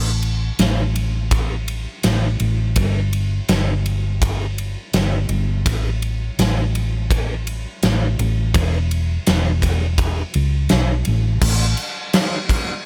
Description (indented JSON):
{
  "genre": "rock, shoegaze and dream pop",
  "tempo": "83 BPM",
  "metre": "4/4",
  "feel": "straight",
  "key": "unclear",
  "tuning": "A4 = 440 Hz",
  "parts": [
    { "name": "hollow-body short-scale fingered electric bass", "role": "bass", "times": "0.0-11.7 s", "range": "E1 to C#2", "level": "-21 LUFS", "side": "equal", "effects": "none" },
    { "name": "gated 80s drum kit", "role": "drums", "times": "0.2-12.7 s", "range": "crash cymbal, kick drum, ride cymbal, snare drum", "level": "-23 LUFS", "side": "equal", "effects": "none" }
  ],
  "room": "light reverb",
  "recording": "none",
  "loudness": "-20 LUFS",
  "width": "mono",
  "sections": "0.0-11.4 A section; 11.4-12.9 B section",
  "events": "none",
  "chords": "none"
}